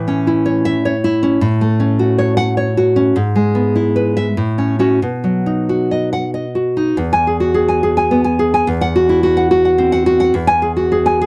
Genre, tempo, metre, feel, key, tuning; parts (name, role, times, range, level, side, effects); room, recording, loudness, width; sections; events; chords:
romantic piece for solo classical guitar; 88-109 BPM; 3/4; rubato; E major; A4 = 441 Hz
nylon-string guitar; solo; 0.0-11.3 s; E2 to G#5; -15 LUFS; equal
small room ambience; dry, close 1970s-style studio recording; -15 LUFS; mono
0.0-7.0 A section; 7.0-11.3 B section
0.0 A; 1.4 F#m/A; 3.2 E/G#; 4.4 F#m/A; 5.0 B; 7.0 E; 8.7 Esus2; 10.3 E